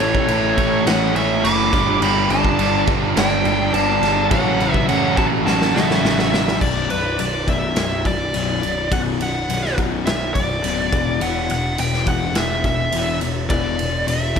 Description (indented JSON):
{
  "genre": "hard rock",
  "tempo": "104 BPM",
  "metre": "4/4",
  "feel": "straight",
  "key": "B minor",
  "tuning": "A4 = 441 Hz",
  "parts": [
    { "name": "dark smooth lead guitar", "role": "melody", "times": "0.0-14.4 s", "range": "B4 to D6", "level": "-22 LUFS", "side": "equal", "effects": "overdrive, slapback echo" },
    { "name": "octave-fuzz lead guitar", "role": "second line", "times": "0.0-6.3 s", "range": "A3 to B4", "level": "-25 LUFS", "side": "right 5 dB", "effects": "distortion, slapback echo, analog delay" },
    { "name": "cranked stack guitar", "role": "riff", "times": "0.0-6.6 s", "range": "F#2 to A3", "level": "-24 LUFS", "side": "right 11 dB", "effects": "overdrive, spring reverb" },
    { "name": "crunchy overdriven guitar", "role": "riff", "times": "0.0-14.4 s", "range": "B1 to A3", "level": "-24 LUFS", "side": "left 9 dB", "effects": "none" },
    { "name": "distorted electric guitar", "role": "riff", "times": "0.0-6.6 s", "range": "F#2 to A3", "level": "-26 LUFS", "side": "equal", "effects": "none" },
    { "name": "fuzz picked electric bass", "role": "bass", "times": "0.0-14.4 s", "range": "B0 to A1", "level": "-25 LUFS", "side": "equal", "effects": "overdrive" },
    { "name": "raw garage drum kit", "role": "drums", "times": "0.0-14.4 s", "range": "crash cymbal, kick drum, ride cymbal, snare drum", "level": "-22 LUFS", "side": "right 1 dB", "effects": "none" }
  ],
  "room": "moderate lush hall reverb, RT60 2.2 s",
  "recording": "big arena sound",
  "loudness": "-16 LUFS",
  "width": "side -6 dB against mid",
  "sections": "0.0-6.6 A section; 6.6-14.4 B section",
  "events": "drum fill 5.5-6.6",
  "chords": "0.0 A; 1.7 G5; 4.3 F#m/A; 6.6 Bm; 10.9 E5"
}